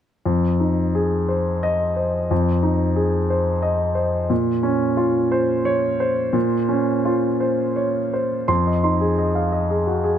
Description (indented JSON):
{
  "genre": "neoclassical minimalist piano",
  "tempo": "54-61 BPM (dotted quarters)",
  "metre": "6/8",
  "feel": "rubato",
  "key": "unclear",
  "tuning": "A4 = 440 Hz",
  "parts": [
    { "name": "warm grand piano", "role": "solo", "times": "0.3-10.2 s", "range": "F2 to C6", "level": "-18 LUFS", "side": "equal", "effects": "none" }
  ],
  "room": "light reverb",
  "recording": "close, detailed microphones",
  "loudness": "-18 LUFS",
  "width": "side -9 dB against mid",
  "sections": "0.3-8.5 A section; 8.5-10.2 B section",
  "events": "none",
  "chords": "0.3 Fm7; 4.3 Bbmadd9; 8.5 Fm7"
}